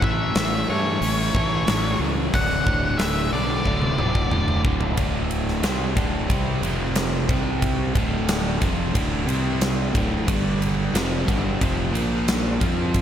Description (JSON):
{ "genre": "classic rock", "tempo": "91 BPM", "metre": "4/4", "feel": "straight", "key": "D major", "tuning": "A4 = 439 Hz", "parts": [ { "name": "octave-fuzz lead guitar", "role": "melody", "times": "0.0-4.6 s", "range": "C#5 to F#5", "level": "-26 LUFS", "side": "left 2 dB", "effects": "distortion, slapback echo" }, { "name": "crunchy overdriven guitar", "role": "riff", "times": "0.0-13.0 s", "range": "D2 to F4", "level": "-24 LUFS", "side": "equal", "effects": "none" }, { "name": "fuzz fingered electric bass", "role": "bass", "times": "0.0-13.0 s", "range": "D1 to G2", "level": "-27 LUFS", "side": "equal", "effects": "overdrive" }, { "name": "huge arena drum kit", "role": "drums", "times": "0.0-13.0 s", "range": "hi-hat, kick drum, ride cymbal, snare drum, toms", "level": "-24 LUFS", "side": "equal", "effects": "none" } ], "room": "light reverb, small room ambience", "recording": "none", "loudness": "-20 LUFS", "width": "side -10 dB against mid", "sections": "0.0-5.0 A section; 5.0-13.0 B section", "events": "drum fill 3.7-5.0", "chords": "0.0 A; 2.3 D; 5.0 D5; 6.6 F5; 7.3 C5; 8.0 D5; 9.3 C5; 9.9 D5; 10.3 G5; 11.9 Bb5" }